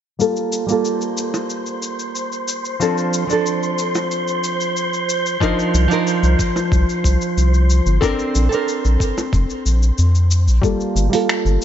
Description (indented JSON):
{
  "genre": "sunset chillout",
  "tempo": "92 BPM",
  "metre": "4/4",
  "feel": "straight",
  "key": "G minor",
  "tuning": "A4 = 440 Hz",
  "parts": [
    { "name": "nylon-string guitar", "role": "accompaniment", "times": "0.2-11.6 s", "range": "F3 to Bb4", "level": "-20 LUFS", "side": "moving between left 5 dB and right 5 dB", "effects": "auto-pan, vintage 12-bit sampler grit, low-pass filter, digital delay" },
    { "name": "dusty soul sampler-style drum kit", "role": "drums", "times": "0.2-11.6 s", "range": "finger snaps, hi-hat, shaker", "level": "-27 LUFS", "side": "left 3 dB", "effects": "overdrive" },
    { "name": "wind-like tuned noise texture", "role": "texture", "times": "1.0-10.6 s", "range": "C5 to C6", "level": "-25 LUFS", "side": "right 1 dB", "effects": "built-in reverb" },
    { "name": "bongos", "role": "percussion", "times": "1.3-9.3 s", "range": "none", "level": "-28 LUFS", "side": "right 1 dB", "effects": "none" },
    { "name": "electronic kick drum", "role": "drums", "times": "5.4-10.8 s", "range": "none", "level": "-21 LUFS", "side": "equal", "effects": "overdrive" },
    { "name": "round analog bass", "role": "bass", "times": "5.7-11.6 s", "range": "F1 to F2", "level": "-14 LUFS", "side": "equal", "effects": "none" }
  ],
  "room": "light reverb, digital ambience",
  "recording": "nothing above 7.8 kHz",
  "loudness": "-16 LUFS",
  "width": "side -10 dB against mid",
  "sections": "0.2-10.6 A section; 10.6-11.6 B section",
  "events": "filter sweep on nylon-string guitar 0.2-10.6, 10.6-11.6",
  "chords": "0.2 Gm9; 2.8 Dm7; 5.4 Cm11; 8.0 Bbmaj9; 10.6 Gm9"
}